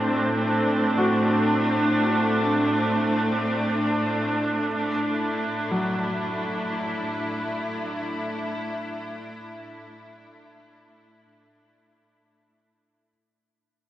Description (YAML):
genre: ambient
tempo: free time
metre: none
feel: none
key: unclear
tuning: A4 = 444 Hz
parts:
  - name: rich symphonic string section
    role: sustained chords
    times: 0.0-13.1 s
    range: A2 to E4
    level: -23 LUFS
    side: equal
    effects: none
  - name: felt-muted upright piano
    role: arpeggios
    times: 0.0-13.1 s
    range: F#3 to A5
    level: -32 LUFS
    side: left 1 dB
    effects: diffuse ambient delay
room: wet cathedral reverb, RT60 6.2 s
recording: worn, warbling old tape, cassette tape, warbly pitch drift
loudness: -22 LUFS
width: side -13 dB against mid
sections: 0.0-13.1 A section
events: fade-out 1.9-13.1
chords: 0.0 Am; 4.7 Dadd9/A